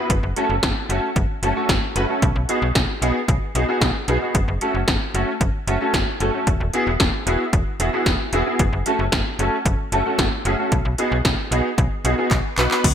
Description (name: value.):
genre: synth-pop.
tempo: 113 BPM.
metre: 4/4.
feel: straight.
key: F# dorian.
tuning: A4 = 440 Hz.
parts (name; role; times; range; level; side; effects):
clear baby grand piano; accompaniment; 0.0-12.8 s; A3 to B4; -22 LUFS; equal; ensemble chorus.
slap-like FM bass; bass; 0.1-12.9 s; E1 to C#2; -23 LUFS; equal; none.
80s electronic pad drums; drums; 0.1-12.9 s; crash cymbal, handclaps, hi-hat, kick drum, snare drum; -21 LUFS; equal; gated reverb.
room: moderate lush hall reverb, RT60 1.5 s, digital ambience.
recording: bright 1980s-style digital production.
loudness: -18 LUFS.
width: side -9 dB against mid.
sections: 0.0-12.8 A section.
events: drum fill 12.3-12.8.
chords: 0.1 F#m; 2.2 B6; 4.3 F#m; 6.5 Eadd9; 8.6 F#m; 10.7 B6.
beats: | 0.10 0.63 1.16 1.69 | 2.22 2.75 3.29 3.82 | 4.35 4.88 5.41 5.94 | 6.47 7.00 7.53 8.06 | 8.60 9.13 9.66 10.19 | 10.72 11.25 11.78 12.31 | 12.84.